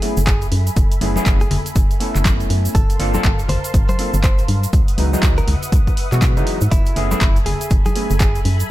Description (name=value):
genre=deep house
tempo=121 BPM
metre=4/4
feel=swing 61% on 16ths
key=F# minor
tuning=A4 = 440 Hz
part: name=direct-recorded clean electric guitar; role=melody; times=0.0-8.4 s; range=E4 to C5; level=-28 LUFS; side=equal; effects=ping-pong delay
part: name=warm analog pad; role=sustained chords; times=0.0-8.7 s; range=A4 to D#6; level=-30 LUFS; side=right 1 dB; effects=chorus, sidechain pumping
part: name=overdriven tine electric piano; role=stabs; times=0.0-8.1 s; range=E3 to A4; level=-25 LUFS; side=equal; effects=lush chorus, sidechain pumping, ping-pong delay
part: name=punchy analog drum machine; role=drums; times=0.0-8.7 s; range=handclaps, hi-hat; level=-26 LUFS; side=right 1 dB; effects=none
part: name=organ-like FM bass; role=bass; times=0.2-8.6 s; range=F#1 to C#3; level=-19 LUFS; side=equal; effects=tube saturation, sidechain pumping
part: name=egg shaker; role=percussion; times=0.2-8.7 s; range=none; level=-32 LUFS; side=right 4 dB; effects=none
part: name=electronic kick drum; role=drums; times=0.3-8.3 s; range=none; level=-17 LUFS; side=equal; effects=none
part: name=congas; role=percussion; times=0.5-8.6 s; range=none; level=-27 LUFS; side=left 4 dB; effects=none
room=digital ambience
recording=none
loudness=-14 LUFS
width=side -15 dB against mid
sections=0.0-8.7 A section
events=none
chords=0.0 F#m11; 2.7 Gm11; 4.7 C#m11; 6.7 F#m11